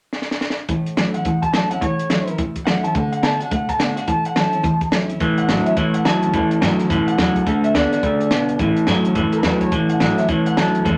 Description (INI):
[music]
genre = rockabilly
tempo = 212 BPM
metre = 4/4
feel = swing 62% on 8ths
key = A major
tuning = A4 = 435 Hz
[part]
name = compact cocktail drum kit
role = drums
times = 0.1-10.9 s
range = hi-hat, kick drum, snare drum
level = -26 LUFS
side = equal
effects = none
[part]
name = picked steel-string acoustic guitar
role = accompaniment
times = 0.7-11.0 s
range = E2 to F#4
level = -29 LUFS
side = equal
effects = none
[part]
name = electric guitar through a small old amp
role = riff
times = 0.7-11.0 s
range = A2 to B3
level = -21 LUFS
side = equal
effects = none
[part]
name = electric guitar through a small old amp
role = melody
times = 1.1-11.0 s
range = B4 to A5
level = -25 LUFS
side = equal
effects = none
[part]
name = upright bass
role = bass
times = 5.2-11.0 s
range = A1 to G2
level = -31 LUFS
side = equal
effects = none
[sound]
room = moderate club ambience, RT60 0.5 s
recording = none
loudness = -19 LUFS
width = mono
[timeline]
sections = 0.7-5.2 A section; 5.2-11.0 B section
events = drum fill 0.1-0.7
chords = 0.0 N.C.; 0.7 A; 3.0 D; 4.1 A; 7.5 D; 8.6 A